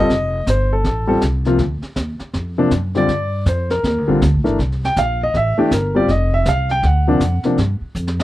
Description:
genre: jazz piano trio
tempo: 160 BPM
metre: 4/4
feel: swing 63% on 8ths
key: F mixolydian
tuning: A4 = 440 Hz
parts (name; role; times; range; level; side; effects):
- warm concert grand piano; melody; 0.0-8.2 s; C3 to G5; -17 LUFS; left 1 dB; none
- upright bass; bass; 0.0-8.2 s; F1 to G2; -19 LUFS; equal; none
- jazz brush drum kit; drums; 0.1-8.2 s; brushed snare drum, hi-hat, kick drum, snare drum; -25 LUFS; equal; none
room: little or no reverb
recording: dry, close 1970s-style studio recording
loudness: -15 LUFS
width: side -15 dB against mid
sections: 0.0-8.2 A section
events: grand piano solo 0.0-8.2; drum fill 8.0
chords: 0.1 F7; 1.6 D(#9); 3.1 Gm7; 4.6 C7; 6.1 F5; 6.8 D7alt; 7.6 Ebadd9 (rootless)

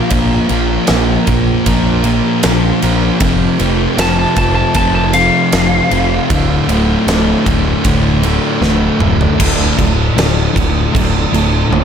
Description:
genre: quiet-loud alternative rock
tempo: 78 BPM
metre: 4/4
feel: straight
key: D minor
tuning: A4 = 440 Hz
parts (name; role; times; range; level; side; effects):
- lightly driven lead guitar; melody; 0.0-7.4 s; F5 to A5; -17 LUFS; left 2 dB; digital delay
- fuzz guitar; riff; 0.0-11.8 s; D2 to Bb3; -18 LUFS; right 11 dB; distortion
- thick fuzz guitar; riff; 0.0-11.8 s; D2 to Bb3; -16 LUFS; left 8 dB; distortion
- growling picked electric bass; bass; 0.1-11.8 s; D1 to Bb1; -17 LUFS; equal; overdrive
- huge arena drum kit; drums; 0.1-11.8 s; crash cymbal, kick drum, ride cymbal, snare drum, toms; -16 LUFS; right 1 dB; none
- bright tonewheel organ; sustained chords; 9.4-11.8 s; D3 to A4; -25 LUFS; right 2 dB; none
- thick fuzz guitar; riff; 9.4-11.8 s; D2 to D3; -20 LUFS; right 2 dB; distortion
room: small room ambience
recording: none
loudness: -10 LUFS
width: side -8 dB against mid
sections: 0.0-9.4 A section; 9.4-11.8 B section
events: lead electric guitar solo 0.0-9.4; drum fill 8.6-9.4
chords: 0.0 Bb5; 3.2 F5; 6.3 Dm

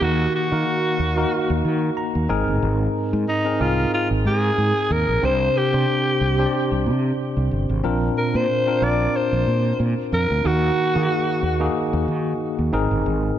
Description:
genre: 1980s-style pop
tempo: 92 BPM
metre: 4/4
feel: swing 55% on 16ths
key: unclear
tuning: A4 = 441 Hz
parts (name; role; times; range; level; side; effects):
- raspy alto saxophone; melody; 0.0-11.8 s; Eb4 to D5; -23 LUFS; equal; ping-pong delay
- tine electric piano; accompaniment; 0.0-13.4 s; Ab2 to Bb5; -23 LUFS; left 1 dB; medium stereo tremolo
- fretless electric bass; bass; 0.0-13.3 s; G1 to Eb3; -22 LUFS; equal; none
room: light reverb, small room reverb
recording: none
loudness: -18 LUFS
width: side -10 dB against mid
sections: 0.0-13.4 A section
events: tine electric piano fill 1.6-2.6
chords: 0.0 Ebm; 2.3 Abadd9; 5.2 Csus2; 7.8 Bbadd9; 10.4 Ebm; 12.7 Abadd9

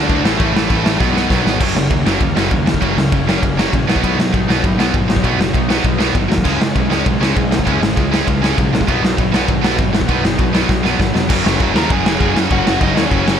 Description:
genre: punk rock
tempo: 198 BPM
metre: 4/4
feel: straight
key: unclear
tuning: A4 = 439 Hz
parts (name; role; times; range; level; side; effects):
- crunchy overdriven guitar; riff; 0.0-13.4 s; F#2 to D4; -21 LUFS; left 13 dB; none
- distorted electric guitar; riff; 0.0-13.4 s; F#2 to F#4; -23 LUFS; left 1 dB; overdrive
- tight distorted guitar; riff; 0.0-13.4 s; F#2 to D4; -19 LUFS; right 13 dB; distortion
- growling picked electric bass; bass; 0.0-13.4 s; E#1 to F#2; -21 LUFS; equal; overdrive
- raw garage drum kit; drums; 0.1-13.3 s; crash cymbal, kick drum, ride cymbal, snare drum; -17 LUFS; equal; none
- biting lead guitar; melody; 11.8-13.4 s; C#4 to A#5; -21 LUFS; left 1 dB; overdrive
room: light reverb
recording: none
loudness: -13 LUFS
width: side -8 dB against mid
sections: 0.0-1.6 A section; 1.6-11.3 B section; 11.3-13.4 C section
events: drum fill 1.0-1.6, 10.7-11.3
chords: 0.2 A; 1.0 B; 1.6 F#; 3.9 B; 6.5 C#; 8.9 B; 11.3 F#

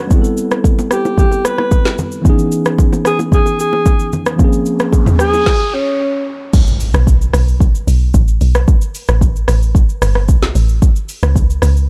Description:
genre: amapiano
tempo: 112 BPM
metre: 4/4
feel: straight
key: unclear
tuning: A4 = 439 Hz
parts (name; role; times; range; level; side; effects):
- tine electric piano; accompaniment; 0.0-5.5 s; E3 to A4; -20 LUFS; equal; none
- deep house drum kit; drums; 0.1-11.9 s; crash cymbal, hi-hat, kick drum, rim click, shaker, snare drum, toms; -15 LUFS; equal; none
- congas and bongos; percussion; 0.1-5.5 s; none; -26 LUFS; equal; none
- mellow alto saxophone; melody; 0.9-6.3 s; C#4 to B4; -19 LUFS; equal; digital delay
- noise sweep and impact; sound effects; 5.0-8.7 s; none; -26 LUFS; equal; none
- deep log drum bass; bass; 6.9-11.9 s; G1 to C#2; -15 LUFS; equal; none
room: little or no reverb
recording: none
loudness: -13 LUFS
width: mono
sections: 0.0-6.5 A section; 6.5-11.9 B section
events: noise sweep 5.0-6.5; stop 5.5-6.5; drop 6.5-11.9; impact 6.5-8.7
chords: 0.1 Am9; 2.2 C#m9; 4.4 A#m9; 6.5 N.C.; 8.7 A7(no3); 10.8 N.C.

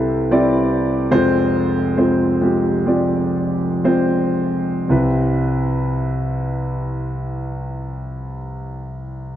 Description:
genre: folk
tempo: 54-78 BPM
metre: 4/4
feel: straight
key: C major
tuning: A4 = 440 Hz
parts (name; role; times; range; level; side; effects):
- warm concert grand piano; melody; 0.0-9.4 s; F1 to D5; -17 LUFS; equal; none
room: wet plate reverb, RT60 3.6 s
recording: heard from further back in the room, nothing above 7.8 kHz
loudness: -16 LUFS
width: side -11 dB against mid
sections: 0.0-4.9 A section; 4.9-9.3 B section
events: slowing down 0.0-4.9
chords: 0.0 Cmaj7; 1.1 Fm; 4.9 Cmaj7

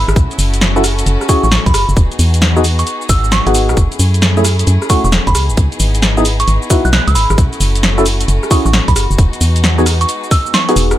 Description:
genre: UK garage, two-step garage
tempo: 133 BPM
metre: 4/4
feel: swing 66% on 16ths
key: unclear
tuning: A4 = 440 Hz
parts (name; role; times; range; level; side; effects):
- glassy synth bell; melody; 0.0-11.0 s; B5 to F#6; -20 LUFS; right 3 dB; chorus, dub echo
- rich chamber violin section; sustained chords; 0.0-11.0 s; G#3 to A4; -24 LUFS; left 1 dB; sidechain pumping
- organ-like FM bass; bass; 0.0-10.9 s; E1 to F#2; -13 LUFS; equal; tube saturation
- punchy analog drum machine; drums; 0.1-11.0 s; cabasa, hi-hat, rim click, snare drum; -16 LUFS; equal; none
- electronic kick drum; drums; 0.2-10.4 s; none; -13 LUFS; equal; none
- percussive organ stab; stabs; 0.8-11.0 s; A3 to A4; -16 LUFS; left 1 dB; lush chorus, dub echo
room: light reverb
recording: none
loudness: -10 LUFS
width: side -13 dB against mid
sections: 0.0-11.0 A section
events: drop 0.0-11.0; band accent 10.5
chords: 0.2 B7sus4 (rootless); 2.0 Emaj7; 3.8 F#m7; 5.3 C#m7; 7.4 B7sus4 (rootless); 9.2 Emaj7

